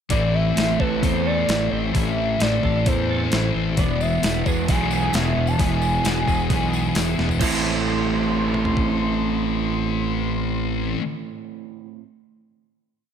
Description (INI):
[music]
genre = rock, shoegaze and dream pop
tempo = 132 BPM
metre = 4/4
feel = straight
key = A harmonic minor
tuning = A4 = 441 Hz
[part]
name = pure sine lead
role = melody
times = 0.1-10.9 s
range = B4 to C6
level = -28 LUFS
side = equal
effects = chorus, tape echo
[part]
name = twelve-string electric guitar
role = arpeggios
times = 0.1-11.0 s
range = E3 to A4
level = -33 LUFS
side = right 9 dB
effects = analog chorus, tape echo
[part]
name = overdriven semi-hollow guitar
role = riff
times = 0.1-11.0 s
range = E2 to E4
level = -26 LUFS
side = right 10 dB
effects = reverse reverb
[part]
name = thick fuzz guitar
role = riff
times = 0.1-11.0 s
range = E2 to A3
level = -25 LUFS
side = left 9 dB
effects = distortion, analog chorus
[part]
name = growling fingered electric bass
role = bass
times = 0.1-10.9 s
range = E1 to E2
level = -26 LUFS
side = equal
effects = overdrive
[part]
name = crisp 8-bit digital drum machine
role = drums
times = 0.1-8.9 s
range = crash cymbal, hi-hat, kick drum, snare drum, toms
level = -24 LUFS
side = equal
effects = overdrive
[part]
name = tambourine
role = percussion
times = 3.8-7.6 s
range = none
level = -39 LUFS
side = left 17 dB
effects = none
[sound]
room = light reverb, digital ambience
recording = none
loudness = -19 LUFS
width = side -8 dB against mid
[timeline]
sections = 0.1-7.4 verse; 7.4-11.1 final chord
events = drum fill 7.2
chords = 0.1 Am; 3.8 E; 7.4 Am